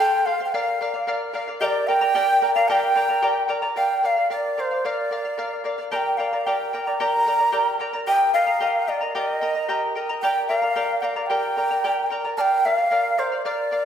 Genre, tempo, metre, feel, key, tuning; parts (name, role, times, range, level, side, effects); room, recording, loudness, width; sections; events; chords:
andean folk, Andean ensemble; 111 BPM; 2/4; straight; A4 = 439 Hz
breathy large quena; melody; 0.0-13.8 s; C5 to Bb5; -21 LUFS; right 1 dB
charango; accompaniment; 0.0-13.8 s; G4 to Bb5; -25 LUFS; left 1 dB
wet recital hall reverb, RT60 1.7 s; recorded in a church or concert hall; -20 LUFS; side -8 dB against mid
0.0-3.8 A section; 3.8-12.4 B section; 12.4-13.8 B section
0.0 F; 0.5 Bb; 1.6 Gm; 3.8 Bb; 5.9 Gm; 8.1 Eb; 10.2 Gm; 12.4 Bb